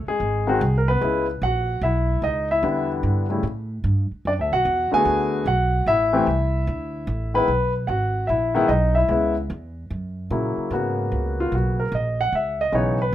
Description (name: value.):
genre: jazz piano trio.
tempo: 148 BPM.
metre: 4/4.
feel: swing 66% on 8ths.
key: unclear.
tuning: A4 = 439 Hz.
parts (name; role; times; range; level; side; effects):
upright bass; bass; 0.0-13.1 s; G#1 to A#2; -24 LUFS; right 1 dB; none.
warm concert grand piano; melody; 0.1-13.1 s; C#3 to G#5; -21 LUFS; left 1 dB; none.
room: light reverb.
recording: minimal, uncompressed stereo recording.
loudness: -19 LUFS.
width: side -12 dB against mid.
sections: 0.0-10.7 A section; 10.7-13.1 B section.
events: grand piano solo 10.7-13.1.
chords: 0.2 G#; 1.0 C#m7; 2.6 Em7; 3.4 Gsus2; 4.2 D6; 5.9 Am; 6.7 Dsus2; 7.5 Emaj7; 9.1 C#m7; 9.9 F#7; 10.7 G#m11; 12.3 C#m9.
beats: 0.20 0.61 | 1.01 1.42 1.82 2.22 | 2.63 3.03 3.44 3.84 | 4.25 4.65 5.05 5.46 | 5.86 6.27 6.67 7.07 | 7.48 7.88 8.29 8.69 | 9.10 9.50 9.90 10.31 | 10.71 11.12 11.52 11.93 | 12.33 12.73 13.14.